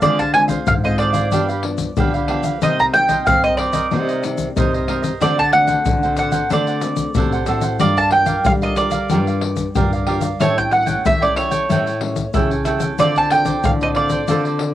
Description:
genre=samba and choro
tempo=92 BPM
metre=4/4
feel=straight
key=unclear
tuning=A4 = 439 Hz
part: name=mandolin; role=melody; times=0.0-14.7 s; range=C#5 to Bb5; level=-18 LUFS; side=right 2 dB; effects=cassette tape
part: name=cavaquinho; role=accompaniment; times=0.0-14.6 s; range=D4 to G5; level=-24 LUFS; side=right 5 dB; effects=cassette tape
part: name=nylon-string guitar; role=accompaniment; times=0.0-14.7 s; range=G2 to Bb4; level=-27 LUFS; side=left 4 dB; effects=cassette tape
part: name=nylon-string guitar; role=bass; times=0.0-14.7 s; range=G2 to C4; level=-23 LUFS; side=equal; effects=none
part: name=tube shaker, surdo and pandeiro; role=percussion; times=0.0-14.7 s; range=none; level=-22 LUFS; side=left 3 dB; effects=none
room=wet booth ambience, RT60 0.2 s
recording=home recording on cassette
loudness=-15 LUFS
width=side -12 dB against mid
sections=0.0-14.7 A section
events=none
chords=0.0 Dm7b5; 1.3 G7; 2.6 Cm7; 5.2 D7; 7.8 Gm7; 10.4 A7; 13.0 Dm7

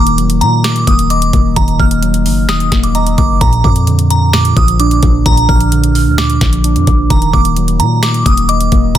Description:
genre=hip hop, trap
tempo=130 BPM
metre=4/4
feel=half-time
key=Eb harmonic minor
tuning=A4 = 440 Hz
part: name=glassy synth bell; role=melody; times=0.0-9.0 s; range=Bb5 to F6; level=-16 LUFS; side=right 2 dB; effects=chorus, phaser, ping-pong delay
part: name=muted felt-like synth keys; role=accompaniment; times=0.0-9.0 s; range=Bb2 to Eb5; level=-15 LUFS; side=right 1 dB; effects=chorus
part: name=hard-hitting 808-style bass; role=bass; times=0.0-9.0 s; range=Eb1 to Bb2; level=-14 LUFS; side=left 1 dB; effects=none
part: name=trap drum kit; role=drums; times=0.1-9.0 s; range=finger snaps, hi-hat, kick drum, snare drum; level=-14 LUFS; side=equal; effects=none
room=digital ambience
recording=dense, heavily limited modern master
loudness=-9 LUFS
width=side -11 dB against mid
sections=0.0-9.0 A section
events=none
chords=0.0 Ebm; 3.4 Bb; 7.1 Ebm

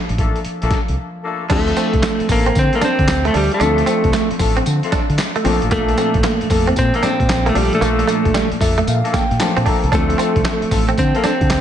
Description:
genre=R&B, new jack swing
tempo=114 BPM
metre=4/4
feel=swing 65% on 16ths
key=D minor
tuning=A4 = 439 Hz
part: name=warm concert grand piano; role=accompaniment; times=0.0-11.6 s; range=Bb2 to Bb5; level=-23 LUFS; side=left 2 dB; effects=low-pass filter, slapback echo
part: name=deep dub fingered electric bass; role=bass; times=0.1-11.6 s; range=A1 to D3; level=-20 LUFS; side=equal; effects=none
part: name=boom bap sampler-style drum kit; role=drums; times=0.1-11.6 s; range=crash cymbal, handclaps, hi-hat, kick drum, snare drum, tambourine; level=-20 LUFS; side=equal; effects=none
part: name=mellow horn section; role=stabs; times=0.2-11.3 s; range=A3 to A4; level=-24 LUFS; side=left 5 dB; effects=low-pass filter, digital delay, slapback echo
part: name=direct-recorded clean electric guitar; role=melody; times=1.5-11.6 s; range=G3 to C4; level=-19 LUFS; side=right 2 dB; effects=tube saturation, digital delay, slapback echo
part: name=direct-recorded clean electric guitar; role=riff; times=1.5-11.5 s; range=G3 to D4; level=-23 LUFS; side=right 5 dB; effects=tube saturation, lush chorus, slapback echo
room=moderate recital hall reverb, RT60 1.3 s, digital ambience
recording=big arena sound, nothing above 10.7 kHz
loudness=-14 LUFS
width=side -10 dB against mid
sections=0.0-1.5 A section; 1.5-11.6 B section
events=break 1.0-1.5; grand piano fill 8.3-9.9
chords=0.0 Bbmaj7; 1.5 Dm7; 5.5 Bbmaj7; 9.9 Dm7

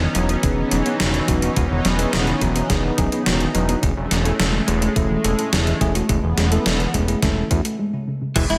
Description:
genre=synthwave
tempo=106 BPM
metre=4/4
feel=straight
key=unclear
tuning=A4 = 437 Hz
part: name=warm analog pad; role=sustained chords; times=0.0-8.6 s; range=E3 to B4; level=-28 LUFS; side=equal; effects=chorus, sidechain pumping
part: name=soft round pluck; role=arpeggios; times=0.0-8.6 s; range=C#3 to B3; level=-29 LUFS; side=equal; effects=chorus, delay
part: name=fat analog bass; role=bass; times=0.0-8.6 s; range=E1 to E2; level=-24 LUFS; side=equal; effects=none
part: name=bell-like tine electric piano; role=stabs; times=0.1-8.4 s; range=G#3 to A4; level=-28 LUFS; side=equal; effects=delay
part: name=gated 80s digital drum machine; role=drums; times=0.1-8.6 s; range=crash cymbal, hi-hat, snare drum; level=-26 LUFS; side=equal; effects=gated reverb, gated reverb snare, overdrive
part: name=electronic kick drum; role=drums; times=0.4-8.5 s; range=none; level=-25 LUFS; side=equal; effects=overdrive
part: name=direct-recorded clean electric guitar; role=riff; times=8.4-8.6 s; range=E3 to E4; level=-24 LUFS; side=equal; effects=ensemble chorus
room=light reverb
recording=none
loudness=-20 LUFS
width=mono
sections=0.0-8.4 A section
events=break 7.8-8.4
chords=0.0 Badd9/E; 3.8 Amaj7/E

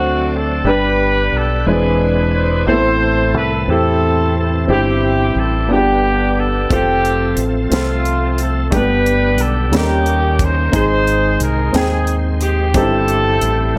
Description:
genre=slow gospel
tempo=60 BPM (dotted quarters)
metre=6/8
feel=straight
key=C major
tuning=A4 = 440 Hz
part: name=warm horn section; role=melody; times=0.0-13.8 s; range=A3 to C5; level=-20 LUFS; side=equal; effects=none
part: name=warm concert grand piano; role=accompaniment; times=0.0-13.8 s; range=G2 to G5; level=-21 LUFS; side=equal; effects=none
part: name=bright tonewheel organ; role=sustained chords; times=0.0-13.8 s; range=D3 to C5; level=-29 LUFS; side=equal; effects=slow rotary speaker, overdrive, chorus vibrato
part: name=deep dub fingered electric bass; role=bass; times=0.0-13.8 s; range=E1 to E2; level=-21 LUFS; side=equal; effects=none
part: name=crisp fusion drum kit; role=drums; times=6.7-13.6 s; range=hi-hat, kick drum, snare drum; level=-23 LUFS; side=equal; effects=none
room=light reverb, studio reverb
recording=none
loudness=-15 LUFS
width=mono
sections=0.0-13.8 A section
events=none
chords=0.0 D7; 0.7 G; 1.7 E7b13; 2.7 Am; 4.7 C/G; 5.7 G; 6.7 F; 8.7 G; 9.7 Eb7; 10.7 Ab; 12.8 C/G

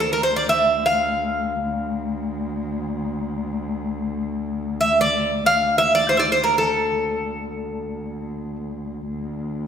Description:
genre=Turkish makam ensemble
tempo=free time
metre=none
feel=none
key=D makam nihavent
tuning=A4 = 441 Hz
part: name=Greek bouzouki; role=melody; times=0.0-8.6 s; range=A4 to F5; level=-18 LUFS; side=equal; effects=none
part: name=dark cello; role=drone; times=0.0-9.7 s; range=D2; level=-27 LUFS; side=left 2 dB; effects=none
room=wet recital hall reverb, RT60 1.8 s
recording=recorded in a church or concert hall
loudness=-20 LUFS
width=side -8 dB against mid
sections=0.0-9.7 A section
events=none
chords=none

